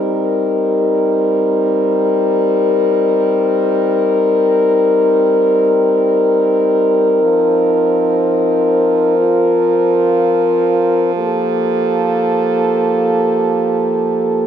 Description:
hip hop; free time; C dorian; A4 = 442 Hz
mellow French horn section; solo; 0.0-14.5 s; F3 to Bb4; -12 LUFS; equal
moderate lush hall reverb, RT60 2.5 s; -12 LUFS; side -9 dB against mid
0.0-14.5 A section
0.0 Cm7; 7.2 F7sus4; 11.2 Gm9
free time

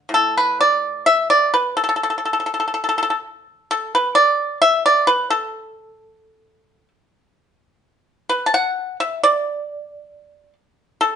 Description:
chinese traditional, Chinese solo plucked strings; 61-69 BPM; 2/4; rubato; D gong mode; A4 = 440 Hz
pipa; solo; 0.0-11.2 s; A2 to A5; -16 LUFS; equal
moderate studio reverb, RT60 0.8 s; band playing live in one room, nothing above 10.6 kHz; -16 LUFS; side -8 dB against mid
0.1-11.2 A section
| 0.12 1.07 | 1.98 2.86 | 3.73 4.61 | 5.52 6.45 | 7.38 8.31 | 9.22 10.11 | 11.01

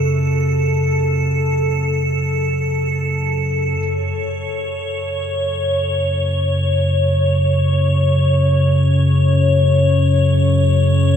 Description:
ambient; free time; F# minor; A4 = 439 Hz
clear baby grand piano; arpeggios; 0.0-3.8 s; F#4; -46 LUFS; right 5 dB
deep rumbling drone; drone; 0.0-11.2 s; F#2 to C#3; -16 LUFS; equal; built-in reverb
icy glass pad; texture; 0.0-11.2 s; A4 to C#5; -20 LUFS; left 1 dB; chorus, built-in reverb
moderate plate reverb, RT60 2.8 s; echo-heavy mix; -15 LUFS; side -8 dB against mid
0.0-3.8 A section; 3.8-11.2 B section
0.0 F#5
free time

